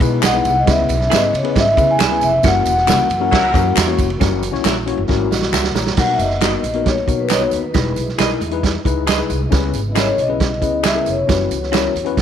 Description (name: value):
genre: uptempo 1960s-style soul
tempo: 136 BPM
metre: 4/4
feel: straight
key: unclear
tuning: A4 = 439 Hz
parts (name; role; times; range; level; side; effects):
- tine electric piano; accompaniment; 0.0-12.2 s; A#3 to A#5; -22 LUFS; left 10 dB; none
- percussive tonewheel organ; sustained chords; 0.0-12.2 s; C#3 to F#4; -29 LUFS; equal; slow rotary speaker, chorus vibrato
- upright bass; bass; 0.0-12.2 s; E1 to C#3; -22 LUFS; equal; none
- vintage drum kit; drums; 0.0-12.2 s; crash cymbal, hi-hat, kick drum, ride cymbal, snare drum; -19 LUFS; right 4 dB; none
- tambourine and handclaps; percussion; 0.0-12.2 s; none; -26 LUFS; left 5 dB; none
- electric guitar through a small old amp; stabs; 0.2-11.8 s; F#4 to E5; -26 LUFS; right 11 dB; none
- vibraphone with soft mallets; melody; 0.3-12.2 s; B4 to G#5; -18 LUFS; left 1 dB; none
- warm horn section; second line; 3.3-3.6 s; F#3 to A#4; -23 LUFS; equal; none
room: moderate plate reverb, RT60 1.6 s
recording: 1960s-style stereo with parts hard left and right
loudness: -14 LUFS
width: side -9 dB against mid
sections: 0.0-4.2 A section; 4.2-6.0 B section; 6.0-12.2 C section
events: band accent 2.4-4.2; drum fill 5.1-6.0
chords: 0.0 Emaj7; 0.7 C#m7; 2.4 F#7; 6.0 Bmaj7; 7.7 Emaj7; 9.5 C#m7; 11.3 F#7sus4